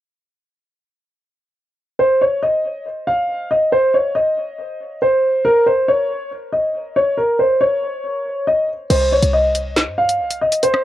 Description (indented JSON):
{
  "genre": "hip hop, drill",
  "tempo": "139 BPM",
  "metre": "4/4",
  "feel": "half-time",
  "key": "C phrygian",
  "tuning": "A4 = 442 Hz",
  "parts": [
    { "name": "dark grand piano", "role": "melody", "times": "2.0-10.8 s", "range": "Bb4 to F5", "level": "-15 LUFS", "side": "equal", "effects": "tape echo" },
    { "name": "short 808-style bass", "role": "bass", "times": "8.9-10.5 s", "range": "C2 to G2", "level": "-20 LUFS", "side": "equal", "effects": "none" },
    { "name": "drill drum kit", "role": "drums", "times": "8.9-10.8 s", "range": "crash cymbal, finger snaps, hi-hat, rim click, snare drum", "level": "-21 LUFS", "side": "equal", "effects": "none" }
  ],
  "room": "moderate booth ambience, RT60 0.2 s",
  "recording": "home recording on cassette",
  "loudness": "-15 LUFS",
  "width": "side -12 dB against mid",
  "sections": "2.0-8.9 A section; 8.9-10.8 B section",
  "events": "none",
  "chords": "2.0 N.C.; 8.9 Cm"
}